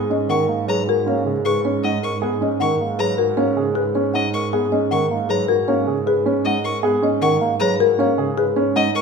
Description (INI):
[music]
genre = classical, minimalist pattern music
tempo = 156 BPM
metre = 6/4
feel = straight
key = G# minor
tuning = A4 = 440 Hz
[part]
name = folk marimba with medium mallets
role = melody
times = 0.0-9.0 s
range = G#4 to F#5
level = -21 LUFS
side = left 10 dB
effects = none
[part]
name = mellow bass clarinet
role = accompaniment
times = 0.0-8.9 s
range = C#3 to B3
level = -25 LUFS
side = right 2 dB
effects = none
[part]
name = dark baby grand piano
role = arpeggios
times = 0.0-9.0 s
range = C#4 to B4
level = -22 LUFS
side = right 9 dB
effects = none
[part]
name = rich double bass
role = bass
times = 0.0-9.0 s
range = G#2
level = -26 LUFS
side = right 6 dB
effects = none
[part]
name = clear violin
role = arpeggios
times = 0.3-9.0 s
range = D#5 to C#6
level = -26 LUFS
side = left 4 dB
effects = none
[sound]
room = moderate recital hall reverb, RT60 1.5 s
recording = minimal, uncompressed stereo recording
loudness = -17 LUFS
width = side -5 dB against mid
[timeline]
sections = 0.0-9.0 A section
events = none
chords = 0.0 G#m9